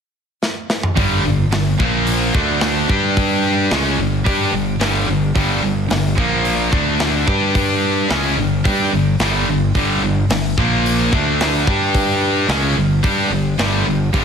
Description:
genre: hard rock.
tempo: 109 BPM.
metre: 4/4.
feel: straight.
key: G minor.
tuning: A4 = 440 Hz.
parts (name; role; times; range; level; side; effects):
tight metal drum kit; drums; 0.4-14.2 s; hi-hat, kick drum, snare drum, toms; -22 LUFS; equal; none.
cranked stack guitar; riff; 1.0-14.2 s; G2 to G4; -20 LUFS; right 12 dB; overdrive, spring reverb.
high-gain distorted guitar; riff; 1.0-14.2 s; G2 to G4; -19 LUFS; left 10 dB; distortion.
fuzz fingered electric bass; bass; 1.0-14.2 s; G1 to G2; -21 LUFS; equal; overdrive.
room: studio reverb.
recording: lossy compression artefacts.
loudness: -14 LUFS.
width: side -7 dB against mid.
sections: 1.0-14.2 A section.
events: drum fill 0.4-1.0.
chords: 0.0 N.C.; 1.0 G5; 1.8 Bb5; 2.3 D5; 2.9 G5; 6.2 Bb5; 6.7 D5; 7.3 G5; 10.6 Bb5; 11.1 D5; 11.7 G5.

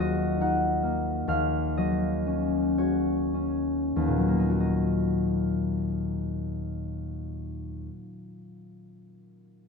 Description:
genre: classical, solo harp piece.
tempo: 31-50 BPM (dotted quarters).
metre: 6/8.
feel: rubato.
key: Eb minor.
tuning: A4 = 439 Hz.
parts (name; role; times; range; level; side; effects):
concert harp; solo; 0.0-8.0 s; Eb2 to Gb5; -25 LUFS; left 2 dB; none.
room: wet stone room reverb, RT60 1.4 s.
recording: none.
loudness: -25 LUFS.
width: side -5 dB against mid.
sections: 0.0-4.6 A section; 4.6-8.4 B section.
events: slowing down 0.0-4.6.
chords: 0.0 Ebm6; 1.3 Db9sus4/Eb; 4.6 Ebm.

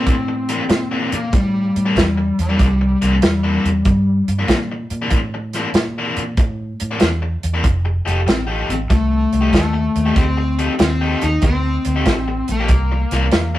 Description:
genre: electric blues shuffle.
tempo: 95 BPM.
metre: 4/4.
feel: swing 67% on 8ths.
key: C mixolydian.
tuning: A4 = 438 Hz.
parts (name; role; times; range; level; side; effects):
overdriven slide guitar; melody; 0.0-4.3, 8.3-13.6 s; G3 to Eb4; -19 LUFS; left 2 dB; analog delay.
biting overdriven guitar; riff; 0.0-13.6 s; C3 to G4; -24 LUFS; left 2 dB; none.
vintage muted fingered electric bass; bass; 0.0-13.6 s; F1 to Bb2; -20 LUFS; equal; none.
warm soul drum kit; drums; 0.1-13.5 s; hi-hat, kick drum, snare drum; -17 LUFS; equal; none.
room: light reverb.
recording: rough rehearsal-room recording.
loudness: -15 LUFS.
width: side -14 dB against mid.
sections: 0.0-13.6 A section.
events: none.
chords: 0.0 C9; 7.6 F9; 12.7 C9.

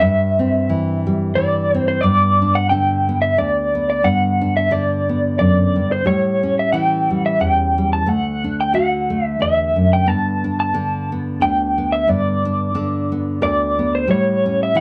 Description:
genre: acoustic folk duo or small band.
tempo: 90 BPM.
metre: 3/4.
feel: swing 56% on 8ths.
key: G major.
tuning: A4 = 437 Hz.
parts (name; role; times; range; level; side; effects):
electric guitar through a small old amp; melody; 0.0-14.8 s; C5 to A5; -20 LUFS; equal; tremolo.
nylon-string guitar; accompaniment; 0.0-14.8 s; D2 to F#4; -21 LUFS; equal; none.
room: moderate studio reverb, RT60 0.5 s.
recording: dark, warm production.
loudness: -18 LUFS.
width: mono.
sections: 0.0-2.0 A section; 2.0-14.8 B section.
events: none.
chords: 0.0 C/G; 2.0 G; 6.1 A7; 8.1 Dadd9; 10.1 Gadd9; 14.1 A7.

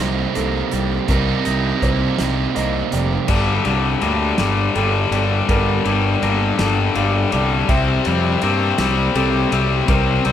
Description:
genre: post-rock.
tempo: 55 BPM (dotted quarters).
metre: 6/8.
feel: straight.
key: G minor.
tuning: A4 = 440 Hz.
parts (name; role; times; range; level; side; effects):
twangy electric guitar; arpeggios; 0.0-10.3 s; G2 to Eb4; -26 LUFS; equal; spring reverb.
distorted electric guitar; riff; 0.0-3.3 s; C3 to Eb4; -22 LUFS; right 8 dB; overdrive.
fuzz fingered electric bass; bass; 0.0-10.3 s; F1 to G2; -20 LUFS; equal; overdrive.
felt-muted upright piano; arpeggios; 0.4-10.3 s; A4 to F5; -29 LUFS; right 6 dB; none.
loose indie drum kit; drums; 0.4-10.3 s; crash cymbal, hi-hat, kick drum, ride cymbal, snare drum; -25 LUFS; equal; none.
tight distorted guitar; riff; 3.3-10.3 s; G2 to C4; -18 LUFS; left 6 dB; distortion.
room: moderate stone room reverb, RT60 1.1 s.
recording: band playing live in one room.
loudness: -16 LUFS.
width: side -10 dB against mid.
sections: 0.0-3.3 A section; 3.3-10.3 B section.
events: build-up 3.3-10.3.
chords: 0.0 Cm7; 3.3 Gm; 7.7 C7.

